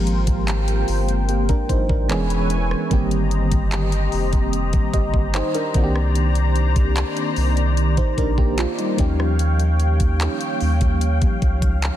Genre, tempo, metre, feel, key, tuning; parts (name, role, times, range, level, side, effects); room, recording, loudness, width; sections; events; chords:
contemporary R&B; 74 BPM; 4/4; straight; A4 = 440 Hz
FM electric piano with tremolo; accompaniment; 0.0-12.0 s; Eb3 to Eb5; -24 LUFS; right 1 dB; phaser
warm analog pad; sustained chords; 0.0-12.0 s; Eb3 to Bb5; -27 LUFS; left 1 dB; chorus, sidechain pumping
warm sub bass; bass; 0.0-11.9 s; E1 to Eb2; -20 LUFS; equal
trap drum kit; drums; 0.1-12.0 s; handclaps, hi-hat, kick drum, rim click; -22 LUFS; equal; soft clipping on snare
little or no reverb; dense, heavily limited modern master; -17 LUFS; side -12 dB against mid
0.0-12.0 A section
0.0 Abmaj13; 2.1 E6; 2.9 Eb6; 5.7 Cm9; 9.0 Eb9